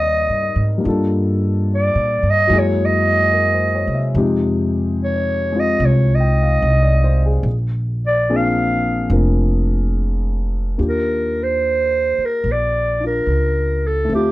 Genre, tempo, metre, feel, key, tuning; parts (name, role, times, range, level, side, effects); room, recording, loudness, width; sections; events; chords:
jazz ballad; 72 BPM; 4/4; swing 68% on 8ths; Eb major; A4 = 440 Hz
growling clarinet; melody; 0.0-14.3 s; G4 to F5; -18 LUFS; right 1 dB; slapback echo
dark concert grand piano; accompaniment; 0.0-14.3 s; C3 to G5; -21 LUFS; left 2 dB
upright bass; bass; 0.0-14.3 s; F1 to C3; -19 LUFS; equal
light reverb; dry, close 1970s-style studio recording; -15 LUFS; side -17 dB against mid
0.0-10.8 A section; 10.8-14.3 B section
clarinet solo 0.0-10.8
0.0 Cm7; 0.9 Gm7; 2.5 Gb9; 4.1 Fm9; 7.4 Bb7; 10.8 Ebmaj9